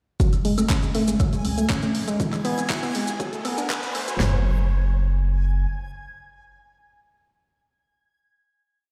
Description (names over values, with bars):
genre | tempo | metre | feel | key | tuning
progressive house | 120 BPM | 4/4 | straight | F# minor | A4 = 439 Hz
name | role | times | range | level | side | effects
soft round pluck | arpeggios | 0.2-4.4 s | E3 to E4 | -28 LUFS | equal | chorus, sidechain pumping, dub echo
deep house drum kit | drums | 0.2-4.3 s | kick drum, snare drum, toms | -26 LUFS | equal | studio ambience
deep house drum kit | drums | 0.2-4.2 s | handclaps, hi-hat | -33 LUFS | equal | high-pass filter on hats, studio ambience, high-pass filter on snare
congas and woodblock | percussion | 0.2-4.1 s | none | -38 LUFS | equal | sidechain pumping on perc, studio ambience
maracas | percussion | 0.2-4.2 s | none | -40 LUFS | equal | none
riser | sound effects | 1.3-4.2 s | none | -37 LUFS | equal | none
backwards swelling texture | texture | 1.1-4.2 s | G#5 | -39 LUFS | equal | built-in reverb, sidechain pumping
round analog bass | bass | 0.4-5.7 s | E1 to C#2 | -26 LUFS | equal | sidechain pumping
room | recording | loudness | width
light reverb, digital ambience | played on a big sound system in a bare room, large studio reverb, high-pass filter | -23 LUFS | mono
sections
0.2-4.2 build; 4.2-8.2 final chord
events
build-up 0.2-4.2; filter sweep 0.2-4.2; riser 1.3-4.2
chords
0.2 F#madd9; 2.2 E; 3.2 B7(no3); 4.2 N.C.